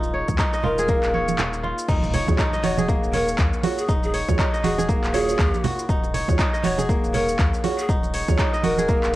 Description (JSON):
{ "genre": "afro house", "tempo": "120 BPM", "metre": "4/4", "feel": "swing 59% on 16ths", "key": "Eb minor", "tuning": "A4 = 440 Hz", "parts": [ { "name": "kora", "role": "arpeggios", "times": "0.0-9.2 s", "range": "Bb3 to Eb5", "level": "-25 LUFS", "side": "equal", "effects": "sidechain pumping, tape echo" }, { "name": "warm sub bass", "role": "bass", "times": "0.0-9.2 s", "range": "Eb1 to Eb2", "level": "-29 LUFS", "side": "equal", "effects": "sidechain pumping" }, { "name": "deep house drum kit", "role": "drums", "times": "0.0-9.1 s", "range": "crash cymbal, handclaps, hi-hat, shaker", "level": "-30 LUFS", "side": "equal", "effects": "overdrive, cassette tape" }, { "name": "congas", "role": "percussion", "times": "0.0-8.9 s", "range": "none", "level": "-27 LUFS", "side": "right 6 dB", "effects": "none" }, { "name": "electronic kick drum", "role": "drums", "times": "0.3-9.0 s", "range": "none", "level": "-23 LUFS", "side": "equal", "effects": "overdrive, cassette tape" }, { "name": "breathy large pan pipes", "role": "melody", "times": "0.6-9.2 s", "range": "Ab4 to Db5", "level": "-27 LUFS", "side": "equal", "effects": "cassette tape, tape echo" }, { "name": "impact", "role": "sound effects", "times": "1.9-3.9 s", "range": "none", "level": "-32 LUFS", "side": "equal", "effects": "none" }, { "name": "felt-muted upright piano", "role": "stabs", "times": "2.3-8.4 s", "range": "F4 to Db5", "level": "-29 LUFS", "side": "right 6 dB", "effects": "sidechain pumping, tape echo" } ], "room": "light reverb, studio reverb", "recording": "home recording on cassette", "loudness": "-19 LUFS", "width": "side -16 dB against mid", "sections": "0.0-1.9 A section; 1.9-9.2 B section", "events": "break 1.4-1.9; drop 1.9-9.2; impact 1.9-3.9", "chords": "0.0 Bbm/Eb; 1.9 Ebm11", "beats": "0.39 0.89 1.39 | 1.89 2.39 2.89 3.39 | 3.89 4.39 4.89 5.39 | 5.89 6.39 6.89 7.39 | 7.89 8.39 8.89" }